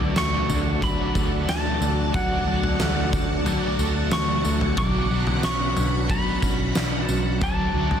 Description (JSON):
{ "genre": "dream pop", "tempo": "91 BPM", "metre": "4/4", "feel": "straight", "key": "D major", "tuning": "A4 = 440 Hz", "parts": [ { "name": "pedal steel guitar", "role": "melody", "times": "0.0-8.0 s", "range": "F#5 to D6", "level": "-29 LUFS", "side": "equal", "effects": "digital delay" }, { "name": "overdriven semi-hollow guitar", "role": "accompaniment", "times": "0.0-8.0 s", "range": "B2 to D5", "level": "-31 LUFS", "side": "right 5 dB", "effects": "tremolo, analog chorus" }, { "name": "soft string machine", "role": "sustained chords", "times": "0.0-8.0 s", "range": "F#4 to D6", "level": "-30 LUFS", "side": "equal", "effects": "ensemble chorus" }, { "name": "mellow electric guitar", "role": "arpeggios", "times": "0.0-8.0 s", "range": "F#3 to D4", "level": "-28 LUFS", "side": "left 1 dB", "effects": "lush chorus, digital delay" }, { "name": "vintage muted picked electric bass", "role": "bass", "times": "0.0-8.0 s", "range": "B1 to D2", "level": "-27 LUFS", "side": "equal", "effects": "none" }, { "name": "oversized low-tuned drum kit", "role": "drums", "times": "0.2-8.0 s", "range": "kick drum, snare drum, tambourine, toms", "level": "-25 LUFS", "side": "equal", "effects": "none" }, { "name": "celesta", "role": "texture", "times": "2.8-6.4 s", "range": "A4 to B4", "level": "-42 LUFS", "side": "right 2 dB", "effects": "none" } ], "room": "light reverb, small room ambience", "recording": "dense, heavily limited modern master", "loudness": "-20 LUFS", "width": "side -8 dB against mid", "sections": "0.0-8.0 A section", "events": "none", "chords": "0.0 D; 4.8 Bmadd9; 7.4 D" }